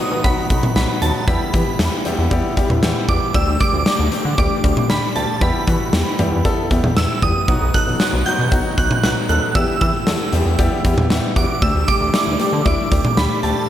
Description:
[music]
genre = synth-pop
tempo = 116 BPM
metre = 4/4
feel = straight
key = E minor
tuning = A4 = 441 Hz
[part]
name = shimmering bell with halo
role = melody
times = 0.0-13.7 s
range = A5 to G6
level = -23 LUFS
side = right 4 dB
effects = ensemble chorus, tremolo, slapback echo
[part]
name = clear grand piano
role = accompaniment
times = 0.0-13.6 s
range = F#3 to A4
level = -22 LUFS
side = left 3 dB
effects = slapback echo
[part]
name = chorused synth bass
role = bass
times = 0.1-13.5 s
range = B1 to E3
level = -20 LUFS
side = equal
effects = none
[part]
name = huge arena drum kit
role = drums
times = 0.2-13.6 s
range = hi-hat, kick drum, snare drum, toms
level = -18 LUFS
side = equal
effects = none
[sound]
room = moderate lush hall reverb, RT60 1.8 s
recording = big arena sound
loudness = -15 LUFS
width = side -11 dB against mid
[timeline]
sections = 0.0-13.7 A section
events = none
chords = 0.0 B; 1.3 Em; 3.3 Dsus4; 5.4 Em; 7.5 B; 9.6 Em; 11.6 Dsus4

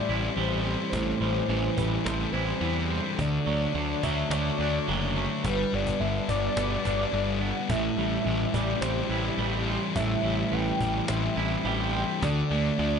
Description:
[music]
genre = rock, shoegaze and dream pop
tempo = 106 BPM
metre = 4/4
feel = straight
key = unclear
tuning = A4 = 440 Hz
[part]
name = warm velvety synth lead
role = melody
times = 0.0-13.0 s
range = A4 to G5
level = -32 LUFS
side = left 1 dB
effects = chorus, tape echo
[part]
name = thick fuzz guitar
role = riff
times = 0.0-13.0 s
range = A2 to G4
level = -30 LUFS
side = left 8 dB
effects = distortion, wide subtle chorus
[part]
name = twangy electric guitar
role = riff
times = 0.0-13.0 s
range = G2 to E4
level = -32 LUFS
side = right 11 dB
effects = reverse reverb
[part]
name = fuzz picked electric bass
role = bass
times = 0.1-13.0 s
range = F#1 to E2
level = -30 LUFS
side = equal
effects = overdrive
[part]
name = cajon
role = drums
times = 0.9-12.4 s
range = none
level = -34 LUFS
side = equal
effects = none
[sound]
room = light reverb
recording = nothing above 10.8 kHz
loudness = -25 LUFS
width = side -6 dB against mid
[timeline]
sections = 0.0-13.0 A section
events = none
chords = 0.0 Am7; 3.2 D; 5.4 Gmaj7; 7.7 Am7; 12.2 D5

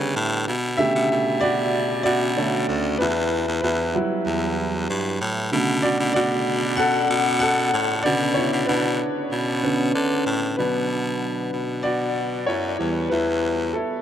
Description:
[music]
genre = piano-driven pop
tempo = 95 BPM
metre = 4/4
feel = straight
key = B minor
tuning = A4 = 442 Hz
[part]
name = clear upright piano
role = accompaniment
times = 0.0-14.0 s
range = C#3 to F#5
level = -22 LUFS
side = equal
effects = none
[part]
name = raspy baritone saxophone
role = bass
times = 0.0-13.8 s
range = D2 to D3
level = -24 LUFS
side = equal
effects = none
[sound]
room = wet huge ambient reverb, RT60 4.6 s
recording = dreamy mix soaked in reverb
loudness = -20 LUFS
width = side -10 dB against mid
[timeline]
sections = 0.0-10.6 A section; 10.6-14.0 B section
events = upright piano solo 0.0-10.6, 10.6-14.0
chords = 0.5 Bm7; 3.0 Emadd9; 5.5 Bm7; 8.1 Bmadd9; 10.6 Bm; 12.8 Em

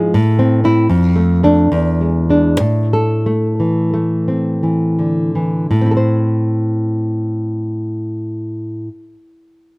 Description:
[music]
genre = romantic piece for solo classical guitar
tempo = 54-81 BPM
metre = 3/4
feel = rubato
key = A minor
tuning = A4 = 440 Hz
[part]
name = nylon-string guitar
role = solo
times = 0.0-9.1 s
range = E2 to C5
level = -13 LUFS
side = equal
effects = none
[sound]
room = light reverb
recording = recorded outdoors, with no room sound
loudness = -13 LUFS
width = side -28 dB against mid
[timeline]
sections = 0.0-5.7 A section; 5.7-8.7 B section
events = slowing down 0.0-5.7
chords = 0.1 Am; 0.9 Dm/F; 1.7 E7; 2.6 Am

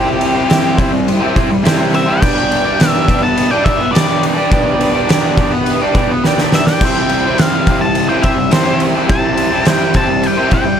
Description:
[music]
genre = garage rock duo or trio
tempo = 104 BPM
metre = 4/4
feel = straight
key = unclear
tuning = A4 = 439 Hz
[part]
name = octave-fuzz lead guitar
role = melody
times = 0.0-10.8 s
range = G4 to A5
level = -18 LUFS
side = left 2 dB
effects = distortion
[part]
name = combo organ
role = sustained chords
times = 0.0-10.7 s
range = B2 to C5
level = -24 LUFS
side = right 1 dB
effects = wide subtle chorus
[part]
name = raw garage guitar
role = riff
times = 0.0-10.8 s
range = C3 to D5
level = -15 LUFS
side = right 1 dB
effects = overdrive
[part]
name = oversized low-tuned drum kit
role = drums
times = 0.2-10.7 s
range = crash cymbal, kick drum, ride cymbal, snare drum, splash cymbal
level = -15 LUFS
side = equal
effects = none
[sound]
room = light reverb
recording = none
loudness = -11 LUFS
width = side -8 dB against mid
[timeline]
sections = 0.0-10.8 A section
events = lead electric guitar solo 0.0-10.8; drum fill 6.2-6.8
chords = 0.0 C; 2.2 G/B; 6.8 C

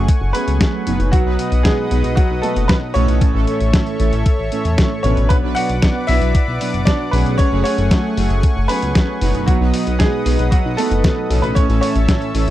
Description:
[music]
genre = italo disco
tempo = 115 BPM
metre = 4/4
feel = straight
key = unclear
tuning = A4 = 440 Hz
[part]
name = clear grand piano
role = melody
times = 0.0-12.5 s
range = F#3 to F#5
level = -22 LUFS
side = equal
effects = tape echo
[part]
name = warm analog pad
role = sustained chords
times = 0.0-12.5 s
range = A3 to E6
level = -25 LUFS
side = left 2 dB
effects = chorus
[part]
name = analog synth brass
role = stabs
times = 0.0-12.5 s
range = A2 to B4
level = -22 LUFS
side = right 3 dB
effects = chorus
[part]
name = chorused synth bass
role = bass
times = 0.0-12.5 s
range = F#1 to E2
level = -18 LUFS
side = equal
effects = none
[part]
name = dusty soul sampler-style drum kit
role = drums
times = 0.1-12.5 s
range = hi-hat, snare drum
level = -21 LUFS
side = left 1 dB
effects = overdrive
[part]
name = electronic kick drum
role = drums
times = 0.1-12.2 s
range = none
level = -15 LUFS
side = equal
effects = none
[sound]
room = little or no reverb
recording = dry, close 1970s-style studio recording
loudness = -14 LUFS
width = side -14 dB against mid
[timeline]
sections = 0.0-12.5 A section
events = none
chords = 0.0 F#madd9; 1.1 B; 3.2 A; 5.3 Bm; 7.4 F#madd9; 9.5 B; 11.6 A

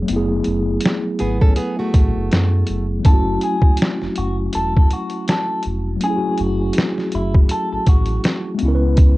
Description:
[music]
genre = lo-fi hip hop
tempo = 81 BPM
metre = 4/4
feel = swing 57% on 16ths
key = F# minor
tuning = A4 = 440 Hz
[part]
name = mellow tine electric piano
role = accompaniment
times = 0.0-9.2 s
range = F#3 to B4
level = -22 LUFS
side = equal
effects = medium stereo tremolo, cassette tape
[part]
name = sub bass with octave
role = bass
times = 0.0-9.2 s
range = E1 to F#2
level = -20 LUFS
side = equal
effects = tube saturation
[part]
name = trip hop sampler-style drum kit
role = drums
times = 0.1-9.2 s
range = hi-hat, kick drum, snare drum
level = -15 LUFS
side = equal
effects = vintage 12-bit sampler grit, cassette tape
[part]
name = nylon-string guitar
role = second line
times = 1.2-2.9 s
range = A3 to A4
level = -24 LUFS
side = right 3 dB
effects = cassette tape, analog delay
[part]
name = clean electric guitar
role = melody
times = 3.1-8.2 s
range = E4 to A4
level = -25 LUFS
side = left 2 dB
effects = cassette tape, analog delay
[sound]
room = little or no reverb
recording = home recording on cassette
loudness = -16 LUFS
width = side -19 dB against mid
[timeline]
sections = 0.0-3.0 A section; 3.0-9.2 B section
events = none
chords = 0.1 F#m11; 3.0 F#m7; 8.6 C#m7

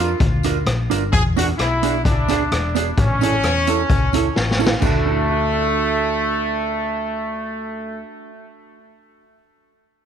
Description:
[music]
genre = ska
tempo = 130 BPM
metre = 4/4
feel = straight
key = D major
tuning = A4 = 441 Hz
[part]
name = clear horn section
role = melody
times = 0.0-8.0 s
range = A3 to G#4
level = -22 LUFS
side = left 1 dB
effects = tape echo
[part]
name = mellow electric guitar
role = accompaniment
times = 0.0-8.4 s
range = B3 to Bb4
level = -24 LUFS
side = right 11 dB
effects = tape echo
[part]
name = hollow-body short-scale fingered electric bass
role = bass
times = 0.0-8.0 s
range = E1 to F2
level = -23 LUFS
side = left 2 dB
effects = none
[part]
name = street-band drum kit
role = drums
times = 0.2-4.9 s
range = crash cymbal, hi-hat, kick drum, rim click, snare drum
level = -20 LUFS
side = left 2 dB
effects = none
[part]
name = tambourine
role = percussion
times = 0.4-5.0 s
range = none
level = -38 LUFS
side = left 17 dB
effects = none
[sound]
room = light reverb, small room ambience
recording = 1960s-style stereo with parts hard left and right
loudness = -17 LUFS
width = side -8 dB against mid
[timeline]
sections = 0.0-4.8 A section; 4.8-8.5 B section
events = drum fill 4.4-4.8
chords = 0.0 Bb; 1.1 E7; 3.0 A; 4.8 D

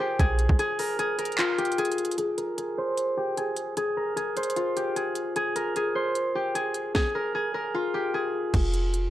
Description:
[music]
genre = hip hop, trap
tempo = 151 BPM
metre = 4/4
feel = half-time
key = unclear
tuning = A4 = 442 Hz
[part]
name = concert harp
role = melody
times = 0.0-9.1 s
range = F4 to C5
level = -26 LUFS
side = left 1 dB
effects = low-pass filter
[part]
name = clean 808-style bass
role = bass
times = 0.2-0.6, 8.5-9.1 s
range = F1 to Bb1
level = -24 LUFS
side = equal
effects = none
[part]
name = trap drum kit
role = drums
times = 0.2-9.0 s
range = crash cymbal, handclaps, hi-hat, kick drum, snare drum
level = -29 LUFS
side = equal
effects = none
[sound]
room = digital ambience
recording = dry, gritty hardware recording, cassette tape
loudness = -25 LUFS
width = side -13 dB against mid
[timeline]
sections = 0.0-2.2 A section; 2.2-8.5 B section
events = break 0.6-2.2; filter sweep on harp 2.2-8.5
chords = 0.0 Abmaj13/Bb; 2.2 N.C.; 8.5 Fm

